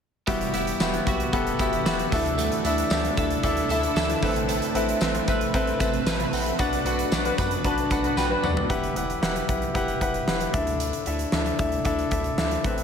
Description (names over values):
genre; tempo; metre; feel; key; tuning
1980s-style pop; 114 BPM; 4/4; straight; E minor; A4 = 439 Hz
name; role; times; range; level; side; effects
bright concert grand piano; accompaniment; 0.3-12.8 s; A2 to B5; -26 LUFS; left 3 dB; none
shimmering ambient pad; sustained chords; 1.4-8.7 s; C3 to B4; -32 LUFS; right 1 dB; chorus, built-in reverb
twelve-string electric guitar; riff; 0.3-8.8 s; G3 to B4; -31 LUFS; right 6 dB; analog chorus, ping-pong delay
round analog bass; bass; 0.3-12.8 s; E1 to F#2; -32 LUFS; right 1 dB; none
huge arena drum kit; drums; 0.3-12.8 s; hi-hat, kick drum, snare drum, toms; -27 LUFS; right 1 dB; none
tambourine; percussion; 0.3-8.6 s; none; -42 LUFS; left 7 dB; none
mellow horn section; stabs; 7.2-8.5 s; D4 to B4; -31 LUFS; left 1 dB; none
room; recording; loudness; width
moderate lush hall reverb, RT60 2.2 s; none; -22 LUFS; side -7 dB against mid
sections
0.3-8.7 A section; 8.7-12.8 B section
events
band accent 6.6-8.7; grand piano fill 7.6-8.7; drum fill 8.2-8.7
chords
0.3 Emadd9; 2.1 Dsus2; 4.2 Amadd9; 6.6 Bm; 8.7 Emadd9; 10.5 Dsus2